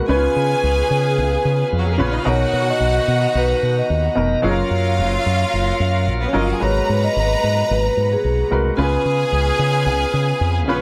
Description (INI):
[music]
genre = disco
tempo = 110 BPM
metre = 4/4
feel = straight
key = unclear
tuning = A4 = 440 Hz
[part]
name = vibraphone with soft mallets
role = melody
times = 0.0-10.4 s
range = G#4 to D#5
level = -24 LUFS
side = equal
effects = none
[part]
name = clear grand piano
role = accompaniment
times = 0.0-10.8 s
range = B2 to B4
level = -27 LUFS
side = equal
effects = none
[part]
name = bright tonewheel organ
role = sustained chords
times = 0.0-10.8 s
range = A#2 to A#5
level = -32 LUFS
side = equal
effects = overdrive, slow rotary speaker
[part]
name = clear studio string section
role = second line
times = 0.1-10.8 s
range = F#3 to A#5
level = -25 LUFS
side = equal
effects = tape echo
[part]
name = fingered electric bass with an envelope filter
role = bass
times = 0.1-10.8 s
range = E#1 to C#3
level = -22 LUFS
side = equal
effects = none
[sound]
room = light reverb, small room ambience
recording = none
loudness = -18 LUFS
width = mono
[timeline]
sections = 0.0-10.8 A section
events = none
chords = 0.1 C#7; 2.3 Bmaj7; 4.4 F#maj7; 6.6 G#m9; 8.8 C#7